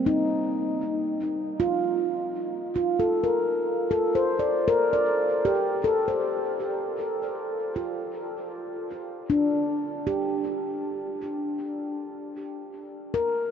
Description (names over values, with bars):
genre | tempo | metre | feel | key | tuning
ambient | 78 BPM | 4/4 | straight | Eb lydian | A4 = 440 Hz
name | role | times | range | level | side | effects
handpan | solo | 0.0-13.5 s | Bb3 to D5 | -24 LUFS | equal | diffuse ambient delay
room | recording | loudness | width
wet huge ambient reverb, RT60 9.7 s | dark, warm production, nothing above 7.7 kHz | -24 LUFS | side -8 dB against mid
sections
0.0-5.1 A section; 5.1-13.5 B section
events
none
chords
0.0 Ebmaj7sus2; 5.1 Eb6 (rootless)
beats
0.45 1.22 | 1.99 2.76 3.53 4.30 | 5.07 5.84 6.61 7.38 | 8.14 8.91 9.68 10.45 | 11.22 11.99 12.76